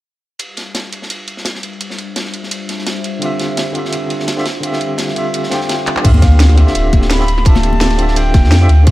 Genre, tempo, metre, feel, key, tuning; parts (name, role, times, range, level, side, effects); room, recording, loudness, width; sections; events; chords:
liquid drum and bass; 170 BPM; 4/4; swing 54% on 16ths; A4 = 444 Hz
warm analog pad; sustained chords; 0.4-8.9 s; G3 to E5; -26 LUFS; equal; chorus
crunchy breakbeat drum kit; drums; 0.4-8.9 s; ride cymbal, snare drum; -24 LUFS; equal; high-pass filter on cymbals, high-pass filter on snare, high-pass filter on room
drum and bass drum kit; drums; 0.4-8.9 s; crash cymbal, handclaps, hi-hat, snare drum; -20 LUFS; equal
overdriven tine electric piano; accompaniment; 3.2-8.9 s; D3 to G5; -19 LUFS; equal; fast tremolo, dub echo
silver concert flute; melody; 6.0-8.9 s; E5 to B5; -22 LUFS; equal; digital delay
sub bass with octave; bass; 6.0-8.9 s; D1 to F2; -10 LUFS; equal
electronic kick drum; drums; 6.0-8.9 s; -10 LUFS; equal
sub drop; sound effects; 6.0-7.5 s; -19 LUFS; equal
congas; percussion; 6.1-8.4 s; -22 LUFS; left 2 dB
small room reverb; -12 LUFS; side -17 dB against mid
0.4-6.0 A section; 6.0-8.9 B section
filter sweep on analog synth pad 0.4-6.0; drum fill 5.9; drop 6.0-8.9; impact 6.0-7.5
0.4 Dm11